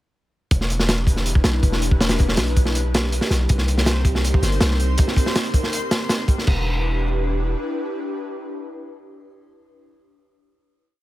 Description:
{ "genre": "drum and bass, jungle", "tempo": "161 BPM", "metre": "4/4", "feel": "straight", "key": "E minor", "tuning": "A4 = 435 Hz", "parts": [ { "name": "airy breathy pad", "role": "sustained chords", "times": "0.7-9.8 s", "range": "C4 to B4", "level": "-28 LUFS", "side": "equal", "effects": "chorus" }, { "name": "long sustained 808-style bass", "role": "bass", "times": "0.5-7.6 s", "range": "E1 to C2", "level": "-21 LUFS", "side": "equal", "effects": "tube saturation" }, { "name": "crunchy breakbeat drum kit", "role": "drums", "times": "0.5-6.5 s", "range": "crash cymbal, hi-hat, kick drum, snare drum", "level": "-19 LUFS", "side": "equal", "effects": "none" }, { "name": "backwards swelling texture", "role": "texture", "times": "3.9-5.0 s", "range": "C5 to C6", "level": "-33 LUFS", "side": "left 2 dB", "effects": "built-in reverb" } ], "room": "small room ambience", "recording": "none", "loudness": "-18 LUFS", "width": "side -16 dB against mid", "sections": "0.5-6.5 drop; 6.5-9.5 final chord", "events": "drop 0.5-6.5", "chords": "0.5 Em7; 3.5 Cm7; 6.5 Em7", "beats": "| 0.51 0.88 1.26 1.63 | 2.00 2.38 2.75 3.12 | 3.49 3.87 4.24 4.61 | 4.98 5.36 5.73 6.10 | 6.47 6.85 7.22 7.59 | 7.96 8.34 8.71 9.08" }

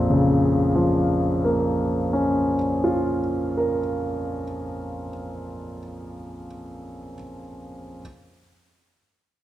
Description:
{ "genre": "classical, romantic nocturne for solo piano", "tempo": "32 BPM (dotted quarters)", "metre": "12/8", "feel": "rubato", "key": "Bb minor", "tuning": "A4 = 440 Hz", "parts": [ { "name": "clear concert grand piano", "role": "solo", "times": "0.0-8.0 s", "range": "Bb1 to Bb4", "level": "-22 LUFS", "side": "equal", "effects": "none" } ], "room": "moderate recital hall reverb, RT60 1.3 s", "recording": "dark, warm production", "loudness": "-20 LUFS", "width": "side -13 dB against mid", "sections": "0.0-5.7 A section", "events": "none", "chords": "0.0 Bbm", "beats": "0.12 1.96 3.77" }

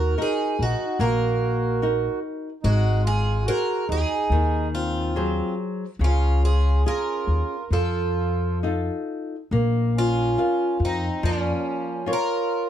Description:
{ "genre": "fado-style ballad", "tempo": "71 BPM", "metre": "4/4", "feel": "rubato", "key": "Bb minor from 9.5 s", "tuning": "A4 = 441 Hz", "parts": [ { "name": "picked twelve-string acoustic guitar", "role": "melody", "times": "0.0-12.7 s", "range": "Db4 to Bb4", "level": "-26 LUFS", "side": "right 1 dB", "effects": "plate reverb" }, { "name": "mellow accordion", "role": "second line", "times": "0.0-12.7 s", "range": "Bb3 to Gb4", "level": "-30 LUFS", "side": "right 4 dB", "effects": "none" }, { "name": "flamenco guitar", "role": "accompaniment", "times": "0.0-12.7 s", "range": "Db3 to F5", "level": "-28 LUFS", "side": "left 1 dB", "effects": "none" }, { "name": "upright bass", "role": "bass", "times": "0.0-11.5 s", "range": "Ab1 to F2", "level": "-22 LUFS", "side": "equal", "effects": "none" } ], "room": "light reverb", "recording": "dark, warm production", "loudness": "-21 LUFS", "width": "side -10 dB against mid", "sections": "0.0-9.5 A section; 9.5-12.7 B section", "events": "none", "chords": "0.0 Ebm; 2.6 Ab7; 6.0 Db; 7.7 F7; 9.5 Bbm", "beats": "0.18 1.00 1.82 | 2.65 3.48 4.30 5.14 | 6.00 6.85 7.72 8.62 | 9.52 10.39 11.24 12.08" }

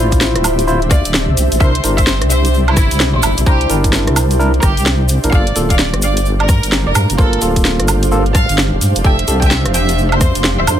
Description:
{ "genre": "UK garage, two-step garage", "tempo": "129 BPM", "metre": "4/4", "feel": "swing 63% on 16ths", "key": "unclear", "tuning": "A4 = 441 Hz", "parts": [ { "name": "bright tine electric piano", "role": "stabs", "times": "0.0-9.4 s", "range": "Bb3 to C5", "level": "-19 LUFS", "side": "equal", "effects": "digital delay" }, { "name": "deep soft wobble bass", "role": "bass", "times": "0.0-10.8 s", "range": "D1 to G2", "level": "-15 LUFS", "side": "equal", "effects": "chorus" }, { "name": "ethereal airy pad", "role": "texture", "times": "0.0-10.8 s", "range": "D4 to F5", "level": "-21 LUFS", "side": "right 1 dB", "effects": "ensemble chorus, built-in reverb, sidechain pumping" }, { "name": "electronic kick drum", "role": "drums", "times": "0.1-10.3 s", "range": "none", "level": "-13 LUFS", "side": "equal", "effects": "overdrive" }, { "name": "garage drum kit", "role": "drums", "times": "0.1-10.8 s", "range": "hi-hat, rim click, snare drum, woodblock", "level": "-17 LUFS", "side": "right 1 dB", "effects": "overdrive" }, { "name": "tube shaker", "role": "percussion", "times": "0.1-10.8 s", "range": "none", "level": "-24 LUFS", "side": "left 2 dB", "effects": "none" }, { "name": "clear chamber violin section", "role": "melody", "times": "0.9-10.8 s", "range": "E4 to A5", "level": "-20 LUFS", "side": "equal", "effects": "ping-pong delay" } ], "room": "little or no reverb", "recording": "none", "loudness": "-11 LUFS", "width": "side -10 dB against mid", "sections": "0.0-10.8 A section", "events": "none", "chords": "0.0 Dm9; 1.4 C7; 5.3 Gm7; 9.0 Dm9", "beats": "0.21 0.67 1.14 | 1.60 2.07 2.53 3.00 | 3.46 3.93 4.39 4.86 | 5.33 5.79 6.25 6.72 | 7.19 7.65 8.12 8.58 | 9.05 9.51 9.98 10.44" }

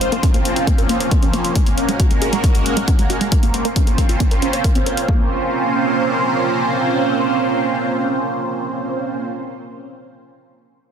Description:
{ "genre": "uplifting trance", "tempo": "136 BPM", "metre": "4/4", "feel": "straight", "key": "Bb minor", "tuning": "A4 = 440 Hz", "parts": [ { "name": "lush unison pad", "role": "sustained chords", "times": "0.0-9.2 s", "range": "F3 to C5", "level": "-19 LUFS", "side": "right 2 dB", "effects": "chorus, phaser, sidechain pumping" }, { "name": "tight sequenced synth", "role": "arpeggios", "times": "0.0-5.3 s", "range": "Ab3 to Db5", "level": "-24 LUFS", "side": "right 2 dB", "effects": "chorus, sidechain pumping, ping-pong delay" }, { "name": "electronic hi-hat", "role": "drums", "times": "0.0-5.1 s", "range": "none", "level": "-26 LUFS", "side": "left 2 dB", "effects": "none" }, { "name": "electronic kick drum", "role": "drums", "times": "0.2-5.2 s", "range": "none", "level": "-16 LUFS", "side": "equal", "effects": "none" } ], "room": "light reverb, digital ambience", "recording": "dense, heavily limited modern master", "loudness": "-15 LUFS", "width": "side -8 dB against mid", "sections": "0.0-5.1 A section; 5.1-8.6 B section", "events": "none", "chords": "0.0 Bbmadd9/F; 1.6 Gbadd9; 3.3 Bbmadd9", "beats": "0.23 0.67 1.11 | 1.55 2.00 2.44 2.88 | 3.32 3.76 4.20 4.64 | 5.08 5.53 5.97 6.41 | 6.85 7.29 7.73 8.17" }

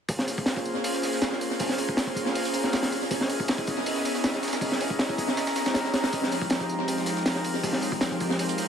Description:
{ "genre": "drum and bass, jungle", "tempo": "159 BPM", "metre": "4/4", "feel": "straight", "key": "Bb dorian", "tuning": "A4 = 440 Hz", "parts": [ { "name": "airy breathy pad", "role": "sustained chords", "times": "0.2-8.7 s", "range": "F3 to Eb5", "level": "-28 LUFS", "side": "equal", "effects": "chorus, vintage 12-bit sampler grit" }, { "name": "breakbeat sampler-style drum kit", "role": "drums", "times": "0.1-8.7 s", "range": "hi-hat, snare drum, tambourine", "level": "-36 LUFS", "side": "right 2 dB", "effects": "high-pass filter on perc, high-pass filter on snare, high-pass filter on hats, tape echo" }, { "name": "crunchy breakbeat drum kit", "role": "drums", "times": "0.1-8.7 s", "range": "hi-hat, kick drum, snare drum", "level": "-27 LUFS", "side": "equal", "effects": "high-pass filter on kick, high-pass filter on hats, high-pass filter on snare, high-pass filter on room, tape echo" }, { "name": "drifting glass-harmonics texture", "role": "texture", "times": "0.7-8.7 s", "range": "Bb4 to Bb5", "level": "-36 LUFS", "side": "left 2 dB", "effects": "chorus, built-in reverb" } ], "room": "moderate echo chamber reverb, RT60 1.4 s, small room ambience", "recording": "echo-heavy mix, vinyl crackle", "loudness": "-24 LUFS", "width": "side -7 dB against mid", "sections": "0.1-8.7 A section", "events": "none", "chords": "0.1 Bbm9; 3.1 Dbm9; 6.1 Fm9", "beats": "| 0.09 0.47 0.84 1.22 | 1.60 1.98 2.35 2.73 | 3.11 3.48 3.86 4.24 | 4.62 5.00 5.37 5.75 | 6.13 6.50 6.88 7.26 | 7.64 8.01 8.39" }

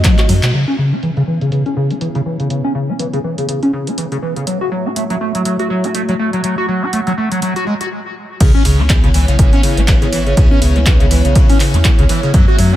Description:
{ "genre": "acid house", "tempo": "122 BPM", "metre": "4/4", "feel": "swing 57% on 16ths", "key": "C# minor", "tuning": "A4 = 440 Hz", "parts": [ { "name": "dark analog pad", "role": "sustained chords", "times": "0.0-12.8 s", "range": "A3 to F#5", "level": "-23 LUFS", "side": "right 1 dB", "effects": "chorus, sidechain pumping" }, { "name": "liquid acid bass", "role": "riff", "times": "0.0-12.8 s", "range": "C#3 to F#4", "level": "-16 LUFS", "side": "equal", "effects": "phaser, overdrive, lush chorus, dub echo" }, { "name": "round analog bass", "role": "bass", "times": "0.0-0.5, 8.4-12.8 s", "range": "G#1 to B2", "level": "-15 LUFS", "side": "equal", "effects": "sidechain pumping" }, { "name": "electronic kick drum", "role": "drums", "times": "0.0-0.2, 8.4-12.5 s", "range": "none", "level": "-12 LUFS", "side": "equal", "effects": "none" }, { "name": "punchy analog drum machine", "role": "drums", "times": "0.0-12.7 s", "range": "crash cymbal, handclaps, hi-hat", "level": "-22 LUFS", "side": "equal", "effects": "low-pass filter on hats, low-pass filter on snare, low-pass filter on cymbals, low-pass filter on room" }, { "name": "vintage brush drum kit", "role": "drums", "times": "0.0-0.5, 8.4-12.8 s", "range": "hi-hat, ride cymbal, snare drum", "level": "-31 LUFS", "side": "left 3 dB", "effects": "sidechain pumping on cymbals, high-pass filter on cymbals, sidechain pumping on hats, high-pass filter on hats, high-pass filter on snare, high-pass filter on room, dub echo" } ], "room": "small room ambience", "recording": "echo-heavy mix", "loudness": "-12 LUFS", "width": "side -13 dB against mid", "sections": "0.5-8.4 A section; 8.4-12.8 B section", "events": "drum fill 0.2-0.5; band accent 0.4; filter sweep on acid bass 0.5-8.4; filter sweep on analog synth pad 0.5-8.4; stop 7.9-8.4; drop 8.4-12.8", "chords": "0.0 F#m; 0.5 C#m7; 4.5 F#m7; 8.4 C#m7", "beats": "0.04 | 0.54 1.03 1.52 2.01 | 2.50 3.00 3.49 3.98 | 4.47 4.96 5.45 5.95 | 6.44 6.93 7.42 7.91 | 8.40 8.90 9.39 9.88 | 10.37 10.86 11.36 11.85 | 12.34" }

